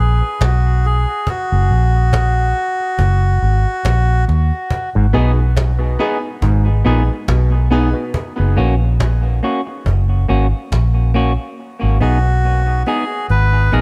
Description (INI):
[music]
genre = dub reggae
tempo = 70 BPM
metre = 4/4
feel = swing 57% on 16ths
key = G# minor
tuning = A4 = 440 Hz
[part]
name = melodica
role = melody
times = 0.0-4.2, 12.0-13.8 s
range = F#4 to B4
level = -23 LUFS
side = equal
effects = dub echo
[part]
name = vintage muted fingered electric bass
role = bass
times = 0.0-13.8 s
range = F#1 to D#2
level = -16 LUFS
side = equal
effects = none
[part]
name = cajon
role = drums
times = 0.2-11.5 s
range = none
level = -25 LUFS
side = equal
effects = none
[part]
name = auto-wah clav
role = riff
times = 5.0-7.5 s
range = G#2 to B2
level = -28 LUFS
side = equal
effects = dub echo
[part]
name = semi-hollow electric guitar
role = accompaniment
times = 5.1-13.8 s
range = A#3 to G#4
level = -24 LUFS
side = equal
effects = dub echo
[part]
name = bright upright piano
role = stabs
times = 5.1-7.9 s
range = B3 to B4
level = -27 LUFS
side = equal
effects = dub echo
[sound]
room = light reverb, small room ambience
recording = echo-heavy mix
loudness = -16 LUFS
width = mono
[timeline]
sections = 0.0-13.8 A section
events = break 0.0-4.7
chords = 0.0 G#m; 1.3 F#; 4.7 G#m; 8.1 F#; 11.6 G#m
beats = 0.41 | 1.27 2.13 2.99 3.85 | 4.71 5.57 6.42 7.28 | 8.14 9.00 9.86 10.72 | 11.58 12.44 13.29